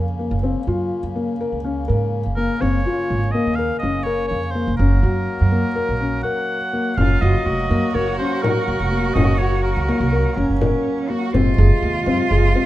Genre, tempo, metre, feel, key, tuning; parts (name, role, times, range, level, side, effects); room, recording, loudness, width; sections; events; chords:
contemporary instrumental, chamber music in an uneven meter; 248 BPM (eighths); 9/8; straight; Gb lydian; A4 = 442 Hz
pedal harmonium; sustained chords; 0.0-12.7 s; C3 to Bb4; -29 LUFS; left 2 dB
felt-muted upright piano; arpeggios; 0.0-12.7 s; Bb3 to Bb4; -23 LUFS; left 3 dB
upright bass; bass; 0.0-12.5 s; F1 to Ab2; -20 LUFS; right 1 dB
clear oboe; melody; 2.4-10.6 s; Bb4 to Gb5; -26 LUFS; right 1 dB
warm cello; second line; 7.0-12.7 s; Db4 to Gb4; -24 LUFS; right 4 dB
frame drum; percussion; 7.0-12.4 s; -25 LUFS; left 2 dB
light reverb; close, detailed microphones; -17 LUFS; side -15 dB against mid
0.0-7.0 A section; 7.0-12.7 B section
break 6.3-7.0
0.0 Bbm/Gb; 4.8 Gb; 7.0 Gbmaj7; 11.3 Fm/Gb